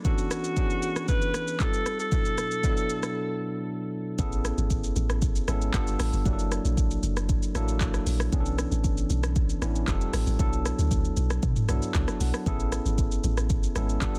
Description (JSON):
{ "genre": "amapiano", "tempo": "116 BPM", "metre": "4/4", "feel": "straight", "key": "A major", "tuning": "A4 = 440 Hz", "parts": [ { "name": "bright tine electric piano", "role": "accompaniment", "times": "0.0-14.2 s", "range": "B2 to A5", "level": "-34 LUFS", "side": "equal", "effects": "none" }, { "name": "afro-pop drum kit", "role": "drums", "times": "0.0-14.2 s", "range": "handclaps, hi-hat, kick drum, rim click, shaker, toms", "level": "-30 LUFS", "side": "equal", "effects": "none" }, { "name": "warm alto saxophone", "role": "melody", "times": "0.1-3.9 s", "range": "F#4 to B4", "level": "-33 LUFS", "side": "equal", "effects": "delay" }, { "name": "deep log drum bass", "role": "bass", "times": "4.2-14.2 s", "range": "F1 to B2", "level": "-30 LUFS", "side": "equal", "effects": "none" } ], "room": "little or no reverb", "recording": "dense, heavily limited modern master", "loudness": "-27 LUFS", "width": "mono", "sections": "0.0-4.2 A section; 4.2-14.2 B section", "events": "break 3.2-4.2; drop 4.2-14.2; tine electric piano fill 11.7-12.5", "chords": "0.0 Bm11; 1.6 F9; 2.1 E9sus4/B; 4.2 Amaj9; 5.7 G9; 6.3 F#7alt; 8.3 Bm11; 9.9 F9; 10.4 E9sus4/B; 12.5 Amaj9" }